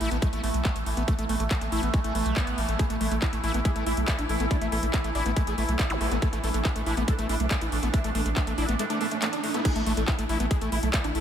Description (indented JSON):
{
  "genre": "psychedelic trance",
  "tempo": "140 BPM",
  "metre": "4/4",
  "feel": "straight",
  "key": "unclear",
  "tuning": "A4 = 440 Hz",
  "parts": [
    { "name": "pulsing gated texture", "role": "sustained chords", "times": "0.0-11.2 s", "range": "E3 to E4", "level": "-32 LUFS", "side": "right 1 dB", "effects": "chorus, built-in reverb, sidechain pumping" },
    { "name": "screaming distorted acid line", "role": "riff", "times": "0.0-11.0 s", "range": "G#3 to E4", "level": "-33 LUFS", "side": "moving between left 4 dB and right 2 dB", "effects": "distortion, chorus, auto-pan, sidechain pumping, analog delay" },
    { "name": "round analog bass", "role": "bass", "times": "0.0-11.2 s", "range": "A1 to B1", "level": "-29 LUFS", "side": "equal", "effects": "none" },
    { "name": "garage drum kit", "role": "drums", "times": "0.0-11.2 s", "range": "crash cymbal, handclaps, hi-hat", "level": "-33 LUFS", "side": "left 1 dB", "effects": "none" },
    { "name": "electronic kick drum", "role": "drums", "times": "0.2-11.0 s", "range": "none", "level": "-25 LUFS", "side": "equal", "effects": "none" },
    { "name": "dense compressed supersaw", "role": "melody", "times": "2.8-11.2 s", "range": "A3 to A4", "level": "-32 LUFS", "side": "right 1 dB", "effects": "phaser, sidechain pumping, analog delay" },
    { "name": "zap and riser", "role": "sound effects", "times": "5.9-9.7 s", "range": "none", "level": "-38 LUFS", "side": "right 1 dB", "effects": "none" }
  ],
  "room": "light reverb",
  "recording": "none",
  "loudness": "-24 LUFS",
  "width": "side -9 dB against mid",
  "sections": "0.0-9.7 A section; 9.7-11.2 B section",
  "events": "drop 9.7-11.2",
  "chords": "0.0 A5",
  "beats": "0.22 0.65 | 1.08 1.51 1.94 2.37 | 2.79 3.22 3.65 4.08 | 4.51 4.94 5.37 5.79 | 6.22 6.65 7.08 7.51 | 7.94 8.37 8.79 9.22 | 9.65 10.08 10.51 10.94"
}